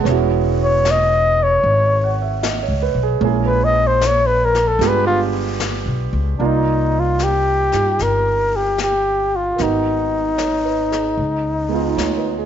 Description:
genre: jazz ballad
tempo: 75 BPM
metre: 4/4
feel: swing 68% on 8ths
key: C minor from 6.4 s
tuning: A4 = 444 Hz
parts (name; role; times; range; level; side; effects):
- dark concert grand piano; accompaniment; 0.0-12.5 s; G#3 to A5; -22 LUFS; right 11 dB; none
- upright bass; bass; 0.1-12.5 s; E1 to G2; -21 LUFS; left 1 dB; none
- jazz brush drum kit; drums; 0.1-12.5 s; brushed snare drum, hi-hat, snare drum; -29 LUFS; left 8 dB; none
- breathy flugelhorn; melody; 0.6-12.5 s; D4 to D#5; -17 LUFS; left 2 dB; none
room: light reverb, small room reverb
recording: 1960s-style stereo with parts hard left and right, nothing above 7.7 kHz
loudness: -15 LUFS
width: side -9 dB against mid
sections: 0.0-6.4 A section; 6.4-12.5 B section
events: flugelhorn solo 0.0-6.4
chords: 0.1 E69; 3.2 A#m7b5; 4.8 G7b9; 6.4 Cm11; 9.6 Abm7; 11.2 Db9

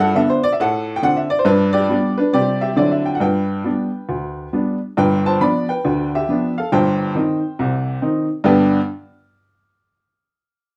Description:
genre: jazz, stride piano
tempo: 138 BPM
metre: 4/4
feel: swing 64% on 8ths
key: G major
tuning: A4 = 440 Hz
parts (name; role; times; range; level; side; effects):
- clear upright piano; solo; 0.0-8.8 s; G1 to B5; -18 LUFS; equal; none
room: wet studio reverb, RT60 0.5 s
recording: heard from further back in the room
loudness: -18 LUFS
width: mono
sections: 0.0-5.0 A section; 5.0-8.5 B section; 8.5-10.2 C section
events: none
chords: 0.0 G; 0.6 D5/A; 1.5 G; 2.4 C; 2.8 D9; 3.2 G; 5.0 G7; 6.7 Cm/G; 8.5 G

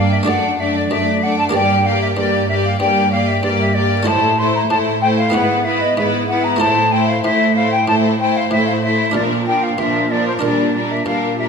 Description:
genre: classical, baroque-style concerto movement with solo episodes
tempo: 94 BPM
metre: 4/4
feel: straight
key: unclear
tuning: A4 = 440 Hz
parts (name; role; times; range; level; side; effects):
- rich studio violin section; melody; 0.0-11.5 s; Bb4 to D5; -23 LUFS; left 3 dB; none
- silver concert flute; melody; 0.0-11.4 s; C5 to C6; -18 LUFS; left 2 dB; none
- clear chamber violin section; second line; 0.0-11.5 s; D4 to G4; -21 LUFS; left 3 dB; none
- bright studio viola section; accompaniment; 0.0-11.5 s; F3 to B3; -23 LUFS; right 1 dB; none
- buff-stop harpsichord; accompaniment; 0.0-11.5 s; F#2 to D5; -24 LUFS; right 2 dB; none
- rich chamber cello section; bass; 0.0-11.5 s; F#2 to Bb2; -21 LUFS; right 4 dB; none
room: wet recital hall reverb, RT60 1.6 s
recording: minimal, uncompressed stereo recording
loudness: -14 LUFS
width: side -6 dB against mid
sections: 0.0-11.5 A section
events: none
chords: 0.3 D/F#; 1.5 Gm; 4.1 Am; 5.3 E/G#; 6.6 Am; 9.2 Bb; 10.4 Gm/Bb

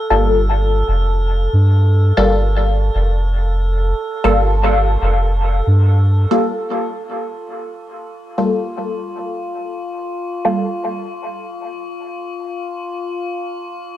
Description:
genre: dub techno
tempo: 116 BPM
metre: 4/4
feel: straight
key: G minor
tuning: A4 = 440 Hz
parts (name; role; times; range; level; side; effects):
- metallic inharmonic drone; texture; 0.0-14.0 s; F4 to A4; -26 LUFS; equal; chorus, built-in reverb
- filtered dub chord stab; stabs; 0.1-10.7 s; G3 to A4; -19 LUFS; left 1 dB; phaser, dub echo
- soft dub sub bass; bass; 0.1-6.3 s; F1 to G2; -14 LUFS; equal; tube saturation
room: little or no reverb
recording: dry, gritty hardware recording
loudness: -15 LUFS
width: side -13 dB against mid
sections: 0.0-6.3 A section; 6.3-14.0 B section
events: filter sweep on synth stab 0.0-6.3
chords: 0.0 Gm9

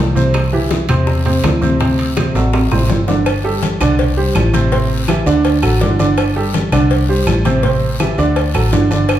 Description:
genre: latin, salsa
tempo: 165 BPM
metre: 4/4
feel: straight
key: unclear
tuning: A4 = 442 Hz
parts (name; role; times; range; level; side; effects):
- clear upright piano; accompaniment; 0.0-9.2 s; C3 to D5; -16 LUFS; right 2 dB; none
- vintage muted fingered electric bass; bass; 0.0-9.2 s; G1 to E2; -17 LUFS; equal; none
- bongos and cowbell; percussion; 0.2-9.2 s; none; -24 LUFS; left 3 dB; none
- congas; percussion; 0.2-9.2 s; none; -22 LUFS; left 2 dB; none
- guiro; percussion; 0.2-9.2 s; none; -30 LUFS; left 6 dB; none
- claves; percussion; 0.3-9.2 s; none; -30 LUFS; right 2 dB; none
- timbales and agogo bells; percussion; 0.3-9.2 s; none; -22 LUFS; right 2 dB; none
room: wet large studio reverb, RT60 0.9 s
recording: heard from further back in the room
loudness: -12 LUFS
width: side -11 dB against mid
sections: 0.0-3.3 A section; 3.3-9.2 B section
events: drum fill 2.4-3.3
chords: 0.3 Cadd9; 1.8 D7; 3.3 Gsus2; 4.0 Csus2; 4.7 Am7; 5.4 D; 6.2 Gsus2; 6.9 Csus2; 7.6 Am7; 8.4 D

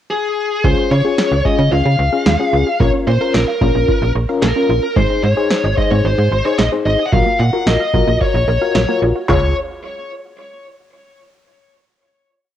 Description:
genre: synth-pop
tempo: 111 BPM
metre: 4/4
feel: straight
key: Db major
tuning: A4 = 440 Hz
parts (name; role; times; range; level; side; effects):
- high-gain lead guitar; melody; 0.1-9.5 s; Ab4 to Gb5; -18 LUFS; left 2 dB; distortion, cassette tape, tape echo
- FM electric piano with tremolo; accompaniment; 0.6-9.5 s; Db4 to Db5; -20 LUFS; left 5 dB; cassette tape
- wide unison pluck; arpeggios; 0.6-9.5 s; Gb3 to F5; -24 LUFS; right 8 dB; cassette tape, tape echo
- slap-like FM bass; bass; 0.6-9.5 s; Ab1 to Db3; -16 LUFS; right 1 dB; none
- electro analog drum machine; drums; 0.6-9.4 s; handclaps, kick drum, snare drum, toms; -18 LUFS; right 1 dB; cassette tape
room: light reverb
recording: home recording on cassette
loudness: -13 LUFS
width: side -10 dB against mid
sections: 0.0-0.6 pickup bar; 0.6-9.3 verse; 9.3-11.5 final chord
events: none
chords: 0.0 N.C.; 0.6 Db; 2.8 Bbm; 5.0 Ab; 7.1 Gbmaj7/Bb; 9.3 Db

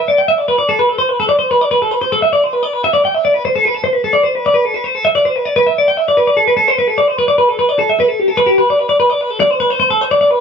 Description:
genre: rock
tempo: 296 BPM (eighths)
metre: 7/8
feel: straight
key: E minor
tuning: A4 = 435 Hz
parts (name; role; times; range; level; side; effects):
- twelve-string electric guitar; solo; 0.0-10.4 s; G4 to G5; -11 LUFS; equal; none
room: moderate studio reverb, RT60 0.9 s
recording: band playing live in one room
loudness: -11 LUFS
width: side -6 dB against mid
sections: 0.0-8.0 A section; 8.0-10.4 B section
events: none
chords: none

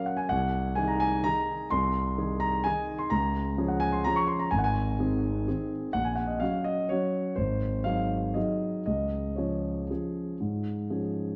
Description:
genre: classical, piano waltz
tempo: 113-134 BPM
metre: 3/4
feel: rubato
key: Db major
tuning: A4 = 440 Hz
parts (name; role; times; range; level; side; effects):
- dark concert grand piano; solo; 0.0-11.4 s; Ab1 to Db6; -29 LUFS; equal; none
room: moderate concert hall reverb, RT60 2.2 s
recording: dark, warm production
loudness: -29 LUFS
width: mono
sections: 0.0-11.4 A section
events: none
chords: 0.3 Ab7/C; 3.1 Db; 4.5 Ab; 5.9 Gb/Bb; 7.4 Ab7; 8.9 Db

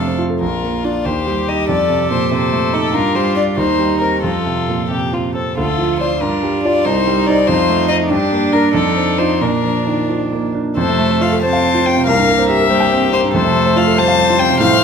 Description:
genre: quick classical-period movement for piano quartet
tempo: 87-97 BPM (dotted quarters)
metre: 6/8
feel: rubato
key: Bb major, F major from 10.8 s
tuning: A4 = 440 Hz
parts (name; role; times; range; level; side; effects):
- rich violin; melody; 0.0-14.8 s; G4 to A5; -18 LUFS; left 7 dB; none
- rich cello; second line; 0.0-14.8 s; F3 to G4; -22 LUFS; right 7 dB; none
- rich violin; second line; 0.0-14.8 s; D4 to C5; -21 LUFS; left 2 dB; none
- warm concert grand piano; accompaniment; 0.0-14.8 s; Bb1 to G5; -16 LUFS; right 2 dB; none
room: moderate recital hall reverb, RT60 1.3 s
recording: minimal, uncompressed stereo recording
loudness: -13 LUFS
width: side -6 dB against mid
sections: 0.4-10.8 A section; 10.8-14.8 B section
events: none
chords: 0.4 Bb; 1.1 Cm/Eb; 1.7 F7; 2.9 G5; 3.6 Cm/Eb; 4.2 F; 5.6 Dm; 6.2 Gm7; 6.9 Cm; 7.5 F7; 8.1 Gm; 8.7 F7; 9.4 Bb; 10.8 F; 12.1 C7; 13.3 F

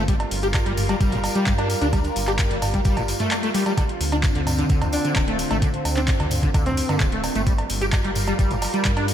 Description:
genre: acid house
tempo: 130 BPM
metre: 4/4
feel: straight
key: unclear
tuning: A4 = 440 Hz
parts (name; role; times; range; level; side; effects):
- lush unison pad; sustained chords; 0.0-9.1 s; D3 to Bb4; -28 LUFS; equal; chorus, phaser, sidechain pumping
- liquid acid bass; riff; 0.0-9.1 s; D2 to G4; -25 LUFS; equal; overdrive, ensemble chorus, diffuse ambient delay
- round analog bass; bass; 0.0-9.1 s; D1 to G2; -27 LUFS; equal; sidechain pumping
- booming analog drum machine; drums; 0.1-9.1 s; cowbell, handclaps, hi-hat, toms; -27 LUFS; right 1 dB; none
- electronic kick drum; drums; 0.1-8.9 s; none; -22 LUFS; equal; none
- tambourine; percussion; 0.1-9.1 s; none; -36 LUFS; left 2 dB; none
- breathy alto saxophone; melody; 4.9-7.1 s; C4 to D4; -30 LUFS; equal; vintage 12-bit sampler grit, ping-pong delay
room: moderate lush hall reverb, RT60 1.9 s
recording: dreamy mix soaked in reverb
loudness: -19 LUFS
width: side -10 dB against mid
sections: 0.0-9.1 A section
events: none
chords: 0.1 Gm7; 3.8 Dm7; 7.5 Gm7

